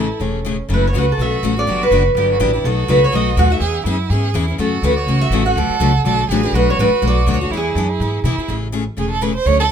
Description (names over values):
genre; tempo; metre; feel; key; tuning
acoustic string swing (jazz manouche); 246 BPM; 4/4; swing 56% on 8ths; A major; A4 = 435 Hz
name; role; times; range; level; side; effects
picked steel-string acoustic guitar; melody; 0.0-8.2 s; G#4 to F#5; -18 LUFS; right 1 dB; none
rich violin; second line; 0.0-9.7 s; C#4 to C#5; -22 LUFS; right 7 dB; none
picked steel-string acoustic guitar; accompaniment; 0.0-9.6 s; B2 to B4; -21 LUFS; left 6 dB; none
upright bass; bass; 0.0-9.7 s; E1 to B2; -18 LUFS; equal; none
room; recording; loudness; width
light reverb; minimal, uncompressed stereo recording; -14 LUFS; side -8 dB against mid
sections
0.7-8.5 A section; 8.5-9.7 B section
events
violin solo 8.5-9.7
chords
0.0 Amaj7; 0.7 F#m; 1.7 Gmaj7; 2.6 B7; 3.6 E6; 4.6 F#m7; 5.6 D6; 6.5 Bm7; 7.5 E; 8.5 Amaj7